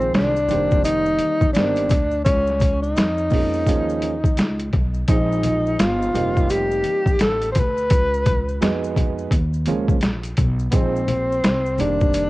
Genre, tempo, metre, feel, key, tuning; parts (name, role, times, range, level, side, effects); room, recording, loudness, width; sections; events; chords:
hip hop, jazz-hop; 85 BPM; 4/4; swing 62% on 16ths; A4 = 440 Hz
breathy tenor saxophone; melody; 0.0-12.3 s; Cb4 to C5; -21 LUFS; left 1 dB; cassette tape
dark upright piano; accompaniment; 0.0-12.3 s; Eb3 to Gb4; -26 LUFS; right 6 dB; cassette tape
upright bass; bass; 0.0-12.3 s; F1 to F2; -25 LUFS; equal
maracas and congas; percussion; 0.0-12.3 s; -32 LUFS; left 5 dB
boom bap sampler-style drum kit; drums; 0.1-12.3 s; hi-hat, kick drum, snare drum; -19 LUFS; equal; overdrive, cassette tape
small room ambience; home recording on cassette; -17 LUFS; side -19 dB against mid
0.0-12.3 A section
0.5 F9sus4; 2.3 Dbsus2; 3.7 Eb9sus4; 5.1 Bb9sus4; 6.1 F9sus4; 7.9 Db9sus4; 9.3 Eb9sus4; 10.7 Bb9sus4; 11.8 F9sus4